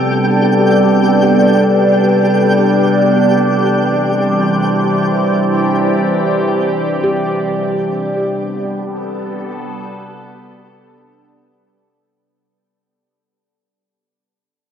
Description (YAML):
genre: ambient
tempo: free time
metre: none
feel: none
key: unclear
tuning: A4 = 440 Hz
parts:
  - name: evolving wavetable pad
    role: sustained chords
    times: 0.0-12.2 s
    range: E3 to D5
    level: -14 LUFS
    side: equal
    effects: phaser, built-in reverb
  - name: analog drone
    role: drone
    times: 0.0-12.3 s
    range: C3 to G3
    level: -17 LUFS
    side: equal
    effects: chorus
  - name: twinkling granular texture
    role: texture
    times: 0.0-12.2 s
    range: G4 to G5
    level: -22 LUFS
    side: equal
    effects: built-in reverb
  - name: handpan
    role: arpeggios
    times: 7.0-8.1 s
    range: G4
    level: -21 LUFS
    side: equal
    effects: diffuse ambient delay
room: wet huge ambient reverb, RT60 7.3 s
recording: worn, warbling old tape, cassette tape, warbly pitch drift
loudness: -11 LUFS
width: side -8 dB against mid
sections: 0.0-12.2 A section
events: fade-in on handpan 0.0-12.2; fade-out on synth texture 0.0-12.2; fade-out 6.1-12.2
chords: 0.0 Gadd9; 3.1 Cadd9; 7.6 Gadd9